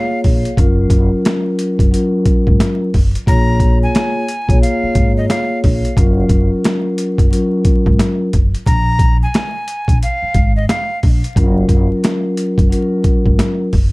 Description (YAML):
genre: hip hop, boom-bap hip-hop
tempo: 89 BPM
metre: 4/4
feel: swing 60% on 16ths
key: unclear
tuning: A4 = 441 Hz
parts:
  - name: breathy bright jazz flute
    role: melody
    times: 0.0-11.0 s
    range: Eb5 to Bb5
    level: -22 LUFS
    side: equal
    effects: analog delay
  - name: vibraphone with soft mallets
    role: accompaniment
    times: 0.0-13.7 s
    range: Gb3 to Db5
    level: -17 LUFS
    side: left 1 dB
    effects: plate reverb
  - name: upright bass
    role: bass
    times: 0.2-13.9 s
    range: Gb1 to Bb1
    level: -17 LUFS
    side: equal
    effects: none
  - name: boom bap sampler-style drum kit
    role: drums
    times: 0.2-13.9 s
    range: hi-hat, kick drum, snare drum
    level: -14 LUFS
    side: equal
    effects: none
room: light reverb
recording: dark, warm production, vinyl crackle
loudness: -12 LUFS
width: side -23 dB against mid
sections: 0.0-13.9 A section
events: none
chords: 0.0 Bbm7; 0.6 Gbmaj7; 3.3 Bbm7; 6.0 Gbmaj7; 8.7 Fmadd11; 11.4 Gbmaj7